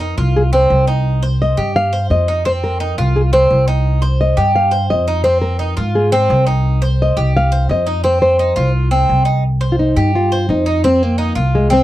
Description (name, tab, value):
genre	latin, Cuban son and guajira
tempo	172 BPM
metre	4/4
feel	straight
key	C minor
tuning	A4 = 440 Hz
part	nylon-string guitar	melody	0.0-11.8 s	Ab3 to F5	-15 LUFS	left 1 dB	none
part	Cuban tres	arpeggios	0.0-11.8 s	C4 to C5	-20 LUFS	right 2 dB	none
part	upright bass	bass	0.0-11.8 s	C2 to Ab2	-16 LUFS	equal	none
room	light reverb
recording	dry, close 1970s-style studio recording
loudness	-12 LUFS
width	side -14 dB against mid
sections	0.0-9.4 A section; 9.4-11.8 A section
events	none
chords	0.0 F5; 1.1 Cm; 2.5 F5; 3.9 Cm; 5.3 Fm7; 6.6 Cm; 8.0 F5; 9.4 Cm; 10.8 F5